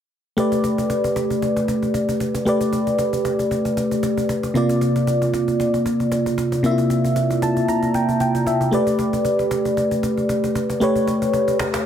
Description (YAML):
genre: amapiano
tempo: 115 BPM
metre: 4/4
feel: swing 55% on 16ths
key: unclear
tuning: A4 = 440 Hz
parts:
  - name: FM electric piano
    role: accompaniment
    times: 0.4-11.9 s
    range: C3 to Bb5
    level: -18 LUFS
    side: equal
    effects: chorus
  - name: cajon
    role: drums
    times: 0.4-11.8 s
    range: none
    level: -28 LUFS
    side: right 1 dB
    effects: none
room: light reverb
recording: dense, heavily limited modern master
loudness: -18 LUFS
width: side -9 dB against mid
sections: 0.4-11.9 A section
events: FM electric piano fill 7.2-8.7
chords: 0.4 A9sus4; 4.6 C9sus4; 8.7 A9sus4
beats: | 0.38 0.90 1.42 1.94 | 2.46 2.99 3.51 4.03 | 4.55 5.07 5.60 6.12 | 6.64 7.16 7.68 8.20 | 8.73 9.25 9.77 10.29 | 10.81 11.34 11.86